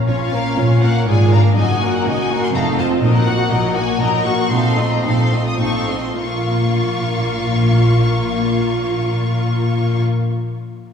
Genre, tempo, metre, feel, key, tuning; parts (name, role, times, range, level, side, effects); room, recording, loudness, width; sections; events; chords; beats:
quick classical-period movement for symphony orchestra; 99-125 BPM; 3/4; rubato; Bb minor; A4 = 440 Hz
clear studio violin section; second line; 0.1-10.0 s; F4 to Gb5; -24 LUFS; left 2 dB
clear studio viola section; accompaniment; 0.1-10.0 s; Gb3 to Gb4; -21 LUFS; equal
rich studio cello section; bass; 0.1-10.0 s; F2 to Bb2; -20 LUFS; equal
rich studio double bass section; bass; 0.1-10.0 s; F1 to Bb1; -20 LUFS; right 1 dB
bright studio violin section; melody; 0.2-10.0 s; F5 to Eb6; -26 LUFS; left 4 dB
wet concert hall reverb, RT60 2.2 s; heard from further back in the room, small room reverb; -14 LUFS; side -7 dB against mid
0.1-6.2 A section; 6.2-9.7 B section
slowing down 2.3-6.2
0.1 Bbm; 1.1 Bb7/Ab; 1.6 Ebm/Gb; 2.5 F7; 3.0 Ebm/Bb; 4.5 F7/Bb; 6.2 Bbm
| 0.06 0.57 1.07 | 1.56 2.06 2.54 | 3.02 3.51 4.00 | 4.51 5.04 5.60 | 6.20 6.78 7.35 | 7.92 8.51 9.09